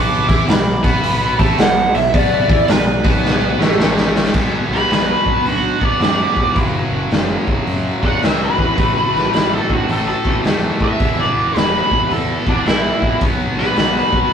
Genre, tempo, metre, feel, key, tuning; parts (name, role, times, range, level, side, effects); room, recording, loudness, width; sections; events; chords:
blues rock power trio and southern rock; 108 BPM; 4/4; swing 65% on 8ths; B minor; A4 = 439 Hz
smooth overdriven lead guitar; second line; 0.0-14.3 s; B3 to D6; -22 LUFS; right 2 dB; tape echo
tight distorted guitar; riff; 0.0-14.3 s; E2 to E4; -21 LUFS; equal; distortion
fuzz picked electric bass; bass; 0.0-14.3 s; E1 to A2; -24 LUFS; equal; overdrive
raw garage drum kit; drums; 0.3-14.2 s; crash cymbal, hi-hat, kick drum, snare drum; -17 LUFS; equal
octave-fuzz lead guitar; melody; 4.7-14.3 s; D4 to F#5; -18 LUFS; equal; wah, distortion
light reverb; rough rehearsal-room recording, tube saturation; -13 LUFS; side -8 dB against mid
0.0-4.3 A section; 4.3-14.3 B section
lead electric guitar solo 0.0-4.3; drum fill 3.2-4.3
0.0 Asus2; 4.3 Bm; 6.6 F#5; 8.8 A5; 11.0 Em; 13.2 B5